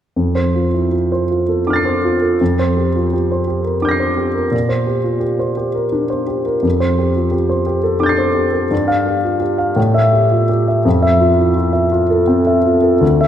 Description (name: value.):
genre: classical, impressionist solo piano.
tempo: 51-60 BPM (dotted quarters).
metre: 6/8.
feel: rubato.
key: F major.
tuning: A4 = 445 Hz.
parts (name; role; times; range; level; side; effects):
clear grand piano; solo; 0.2-13.3 s; D2 to C7; -13 LUFS; equal; none.
room: wet scoring stage reverb, RT60 2.0 s.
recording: none.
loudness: -13 LUFS.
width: side -10 dB against mid.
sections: 0.2-13.3 A section.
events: none.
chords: 0.2 F6; 2.4 C11/F; 4.5 Bb69; 6.6 F69; 8.7 Fsus2/G; 9.8 A5; 10.9 Fmaj7.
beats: | 0.16 1.30 | 2.40 3.47 | 4.53 5.59 | 6.65 7.67 | 8.71 9.77 | 10.85 11.91 | 13.02.